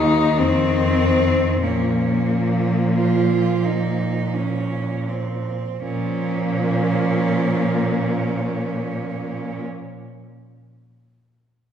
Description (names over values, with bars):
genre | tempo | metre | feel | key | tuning
classical, lyrical piece for cello ensemble | 39-51 BPM | 3/4 | rubato | Bb minor | A4 = 440 Hz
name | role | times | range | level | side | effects
rich cello | melody | 0.0-9.6 s | Bb3 to Eb4 | -23 LUFS | left 4 dB | none
clear cello | second line | 0.0-9.6 s | Bb3 to F4 | -26 LUFS | right 5 dB | none
clear cello | accompaniment | 0.0-9.6 s | Eb3 to F3 | -24 LUFS | right 1 dB | none
rich cello | bass | 0.0-9.6 s | Eb2 to Bb2 | -24 LUFS | right 1 dB | none
room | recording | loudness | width
wet scoring stage reverb, RT60 1.9 s | heard from further back in the room | -18 LUFS | side -8 dB against mid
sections
0.0-5.8 A section; 5.8-10.1 B section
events
slowing down 0.0-5.8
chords
0.4 F5; 1.6 Bbm